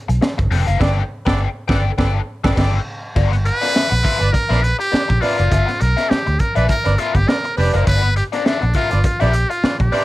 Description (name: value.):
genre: funk.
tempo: 102 BPM.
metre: 4/4.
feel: swing 56% on 16ths.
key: G mixolydian.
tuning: A4 = 440 Hz.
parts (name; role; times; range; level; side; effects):
crunchy overdriven guitar; accompaniment; 0.1-10.0 s; B3 to G5; -24 LUFS; left 8 dB; wah.
vintage muted fingered electric bass; bass; 0.1-9.9 s; F1 to D2; -17 LUFS; equal; none.
crunchy breakbeat drum kit; drums; 0.1-10.0 s; crash cymbal, hi-hat, kick drum, snare drum; -20 LUFS; equal; none.
warm horn section; second line; 0.8-10.0 s; D4 to D5; -24 LUFS; right 3 dB; none.
trumpet with metal mute; melody; 3.5-10.0 s; D4 to B4; -20 LUFS; equal; none.
room: light reverb.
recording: none.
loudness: -15 LUFS.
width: side -17 dB against mid.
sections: 0.0-3.2 A section; 3.2-10.0 B section.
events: band accent 0.8-3.2; muted trumpet solo 3.2-10.0.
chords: 0.0 Gadd9; 3.2 G7#9.